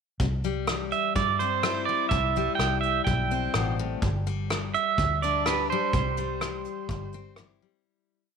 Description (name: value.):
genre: honky-tonk and classic country.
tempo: 126 BPM.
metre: 4/4.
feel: straight.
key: C major.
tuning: A4 = 439 Hz.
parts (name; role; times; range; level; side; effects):
picked steel-string acoustic guitar; accompaniment; 0.2-8.4 s; G2 to G4; -32 LUFS; left 12 dB; none.
vintage muted fingered electric bass; bass; 0.2-7.6 s; G1 to G2; -30 LUFS; equal; none.
soft brush drum kit; drums; 0.2-7.5 s; hi-hat, kick drum, rim click; -31 LUFS; equal; none.
pedal steel guitar; second line; 0.9-7.3 s; B4 to G5; -27 LUFS; right 9 dB; none.
room: moderate echo chamber reverb, RT60 2.4 s.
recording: 1960s-style stereo with parts hard left and right.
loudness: -24 LUFS.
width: side -6 dB against mid.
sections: 0.2-7.8 interlude.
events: pedal steel guitar solo 0.2-7.8; fade-out 5.9-7.8.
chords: 0.2 C; 4.0 G5; 5.9 C.